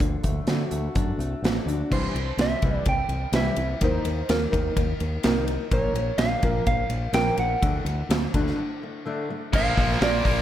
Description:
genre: quiet-loud alternative rock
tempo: 126 BPM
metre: 4/4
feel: straight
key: unclear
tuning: A4 = 440 Hz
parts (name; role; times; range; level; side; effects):
- fingerpicked steel-string acoustic guitar; arpeggios; 0.0-9.5 s; Bb2 to F#4; -29 LUFS; left 2 dB; slapback echo, digital delay
- growling fingered electric bass; bass; 0.0-10.4 s; A1 to D3; -28 LUFS; equal; overdrive
- big rock drum kit; drums; 0.0-10.4 s; crash cymbal, hi-hat, kick drum, ride cymbal, snare drum; -26 LUFS; equal; none
- mellow electric guitar; melody; 1.9-10.4 s; Bb4 to G5; -28 LUFS; right 2 dB; slapback echo
- distorted electric guitar; riff; 9.5-10.4 s; Bb2 to Bb3; -25 LUFS; equal; overdrive, slapback echo
room: moderate scoring stage reverb, RT60 1.9 s, studio ambience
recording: big arena sound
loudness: -22 LUFS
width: side -11 dB against mid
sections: 0.0-1.9 A section; 1.9-9.5 B section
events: break 8.6-9.5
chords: 0.0 D; 1.9 C; 3.8 Eb5; 5.7 Bbm; 7.6 D; 9.5 Bb

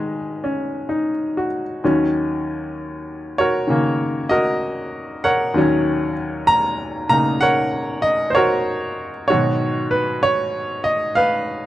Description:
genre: solo jazz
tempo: 64 BPM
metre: 4/4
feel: swing 66% on 8ths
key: Eb minor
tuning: A4 = 440 Hz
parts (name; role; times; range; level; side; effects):
- bright upright piano; solo; 0.0-11.7 s; Eb2 to Bb5; -18 LUFS; equal; none
room: light reverb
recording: dry, close 1970s-style studio recording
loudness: -17 LUFS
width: side -14 dB against mid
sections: 0.0-11.7 A section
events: none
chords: 0.0 Abm7; 1.8 Ebm7; 9.3 Abm7

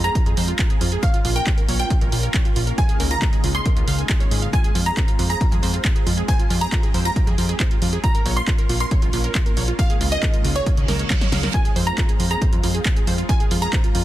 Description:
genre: uplifting trance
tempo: 137 BPM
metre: 4/4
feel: straight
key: F minor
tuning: A4 = 441 Hz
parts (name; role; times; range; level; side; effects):
- wide unison pluck; melody; 0.0-13.9 s; Db5 to C6; -28 LUFS; equal; sidechain pumping, tape echo
- warm grand piano; second line; 0.0-13.9 s; Db5 to C6; -34 LUFS; right 1 dB; none
- analog string pad; sustained chords; 0.0-14.0 s; Db3 to G4; -31 LUFS; equal; ensemble chorus, sidechain pumping
- wide unison pluck; arpeggios; 0.0-14.0 s; F4 to Ab5; -30 LUFS; right 5 dB; sidechain pumping, tape echo
- plucky analog bass; bass; 0.0-14.0 s; Ab1 to F2; -22 LUFS; equal; sidechain pumping
- punchy analog drum machine; drums; 0.0-14.0 s; handclaps, hi-hat, snare drum; -27 LUFS; right 1 dB; none
- electronic kick drum; drums; 0.2-13.8 s; none; -20 LUFS; equal; none
- reverse cymbal; sound effects; 10.8-11.5 s; none; -30 LUFS; right 6 dB; none
room: digital ambience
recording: dense, heavily limited modern master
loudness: -17 LUFS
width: side -14 dB against mid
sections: 0.0-14.0 A section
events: reverse cymbal 10.8-11.5; drum fill 10.9-11.5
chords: 0.0 Fm; 1.0 Bbm; 2.8 Db6; 4.5 Fm; 8.0 Bbm; 9.8 Db6; 11.5 Fm

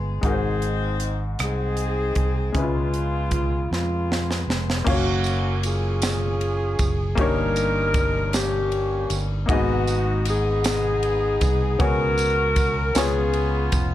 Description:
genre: slow gospel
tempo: 52 BPM (dotted quarters)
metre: 6/8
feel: straight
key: F# major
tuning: A4 = 439 Hz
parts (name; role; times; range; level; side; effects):
- mellow saxophone section; melody; 0.0-13.9 s; G#3 to A#4; -25 LUFS; left 1 dB; none
- clear baby grand piano; accompaniment; 0.0-13.9 s; G2 to E#5; -28 LUFS; left 4 dB; none
- fingered electric bass; bass; 0.0-13.9 s; E#1 to E#2; -25 LUFS; right 1 dB; none
- crisp fusion drum kit; drums; 0.2-13.9 s; crash cymbal, hi-hat, kick drum, ride cymbal, rim click, snare drum; -26 LUFS; right 1 dB; none
- tambourine; percussion; 5.2-13.9 s; none; -34 LUFS; right 8 dB; none
room: small room ambience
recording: none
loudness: -20 LUFS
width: side -13 dB against mid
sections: 0.0-4.9 A section; 4.9-13.9 B section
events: drum fill 3.7-4.9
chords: 0.2 G#7; 2.5 C#7; 4.9 F#maj7; 7.2 D#7/G; 9.5 G#m7; 11.8 C#7sus4; 13.0 C#7

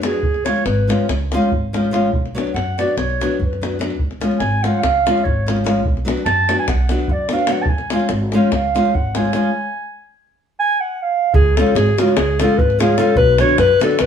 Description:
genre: balkan folk, Balkan wedding band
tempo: 293 BPM (eighths)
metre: 9/8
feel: straight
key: C# phrygian dominant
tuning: A4 = 440 Hz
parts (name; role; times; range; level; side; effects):
- nylon-string guitar; accompaniment; 0.0-14.0 s; C#3 to F#4; -19 LUFS; left 1 dB; none
- upright bass; bass; 0.0-14.1 s; G#1 to F#2; -21 LUFS; right 1 dB; none
- davul; percussion; 0.0-14.1 s; none; -22 LUFS; left 1 dB; none
- dark clarinet; melody; 0.1-14.1 s; F#4 to A5; -18 LUFS; right 1 dB; none
room: moderate studio reverb, RT60 0.8 s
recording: band playing live in one room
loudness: -15 LUFS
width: side -8 dB against mid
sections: 0.0-11.3 A section; 11.3-14.1 B section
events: speeding up 0.0-14.1; clarinet solo 0.0-11.3; stop 9.5-11.3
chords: 0.2 C#; 2.1 Bm; 4.0 C#; 5.8 Bm; 7.7 C#; 9.5 N.C.; 11.3 C#; 13.2 Bm

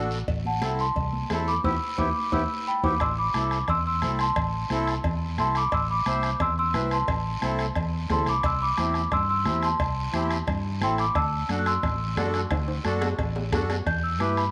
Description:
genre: latin, cumbia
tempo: 177 BPM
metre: 4/4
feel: straight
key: unclear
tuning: A4 = 439 Hz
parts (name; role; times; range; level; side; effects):
- large celesta; melody; 0.0-14.5 s; F#5 to G6; -29 LUFS; equal; none
- accordion; accompaniment; 0.0-14.4 s; B3 to C5; -34 LUFS; equal; none
- fingered electric bass; bass; 0.0-14.5 s; A1 to G2; -32 LUFS; equal; none
- guiro; percussion; 0.1-14.5 s; none; -44 LUFS; equal; none
- bombo; percussion; 0.3-14.5 s; none; -35 LUFS; equal; none
- congas; percussion; 0.3-14.4 s; none; -38 LUFS; equal; none
- cowbell and timbales; percussion; 0.3-14.0 s; none; -37 LUFS; equal; none
room: moderate echo chamber reverb, RT60 1.6 s, small room ambience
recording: none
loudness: -26 LUFS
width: mono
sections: 0.0-3.0 A section; 3.0-13.9 B section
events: band accent 1.6-3.0; drum fill 2.3-3.0, 12.5-13.9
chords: 0.3 Am; 1.6 Em; 3.0 Am; 8.4 C; 11.2 Dadd9; 13.9 Em

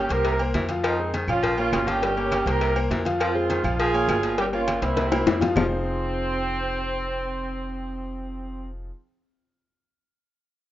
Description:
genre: latin, salsa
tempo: 203 BPM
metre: 4/4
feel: straight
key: F minor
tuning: A4 = 440 Hz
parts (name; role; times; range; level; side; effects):
- mellow horn section; melody; 0.0-8.7 s; C4 to Bb4; -26 LUFS; right 2 dB; plate reverb
- clear baritone saxophone; second line; 0.0-5.7 s; C3 to F3; -32 LUFS; left 1 dB; none
- clear grand piano; accompaniment; 0.0-8.9 s; F3 to G5; -29 LUFS; left 2 dB; plate reverb
- upright bass; bass; 0.0-8.9 s; F1 to F2; -30 LUFS; equal; none
- agogo bells and timbales; percussion; 0.1-5.6 s; none; -32 LUFS; right 3 dB; none
- congas; percussion; 0.1-5.6 s; none; -35 LUFS; equal; none
- cowbell and bongos; percussion; 0.1-5.6 s; none; -28 LUFS; left 5 dB; none
- claves; percussion; 0.8-5.6 s; none; -37 LUFS; left 2 dB; none
room: light reverb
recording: rough home demo mix, nothing above 7.5 kHz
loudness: -22 LUFS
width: side -13 dB against mid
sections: 0.0-5.6 A section; 5.6-7.9 B section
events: drum fill 4.8-5.6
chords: 0.3 C7; 0.8 Fm7; 1.4 Bbm; 2.0 Gdim; 2.6 C7; 3.2 Fm7; 3.8 Bbm; 4.4 Gm7b5; 5.0 C7; 5.6 Fm7

